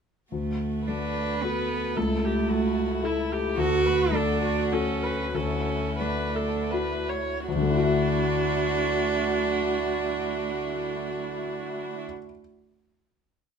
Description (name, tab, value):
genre	neoclassical piano and strings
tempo	78-112 BPM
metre	3/4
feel	rubato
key	D major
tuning	A4 = 439 Hz
part	warm cello	second line	0.3-12.0 s	A3 to F#4	-29 LUFS	right 6 dB	none
part	dark concert grand piano	accompaniment	0.3-12.4 s	C#2 to E5	-28 LUFS	left 4 dB	none
part	warm chamber string section	sustained chords	0.3-12.0 s	A3 to A4	-35 LUFS	equal	none
part	rich viola	accompaniment	0.9-12.0 s	E4 to C#5	-30 LUFS	right 2 dB	none
room	light reverb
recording	minimal, uncompressed stereo recording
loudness	-24 LUFS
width	side -6 dB against mid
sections	0.3-7.5 theme; 7.5-12.0 final chord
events	slowing down 2.8-7.5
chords	0.3 D; 2.0 A/C#; 3.6 D; 5.3 Dadd9